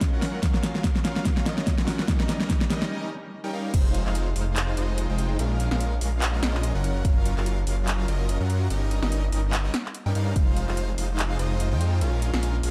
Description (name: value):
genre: future bass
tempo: 145 BPM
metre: 4/4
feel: swing 55% on 16ths, half-time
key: F minor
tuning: A4 = 443 Hz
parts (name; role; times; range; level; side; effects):
- big bright polysynth; riff; 0.0-12.7 s; Gb3 to G5; -33 LUFS; equal; chorus, sidechain pumping
- electronic kick drum; drums; 0.0-3.8, 7.0-7.1, 10.4 s; none; -26 LUFS; equal; studio reverb
- pop drum kit; drums; 0.0-12.7 s; crash cymbal, handclaps, hi-hat, snare drum; -31 LUFS; equal; studio reverb
- detuned saw bass; bass; 3.7-12.7 s; F1 to G2; -27 LUFS; equal; chorus, tube saturation, sidechain pumping
room: light reverb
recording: dark, warm production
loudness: -25 LUFS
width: mono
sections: 0.0-3.7 A section; 3.7-12.7 B section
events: build-up 0.0-3.7; drum fill 0.0-2.9; break 2.9-3.7; drop 3.7-12.7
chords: 0.2 Gbmaj7; 2.1 Eb7/G; 3.7 Fm7; 5.4 Bbm7; 6.8 Gbmaj7; 8.7 Eb7/G; 10.4 Fm7; 12.0 Bbm7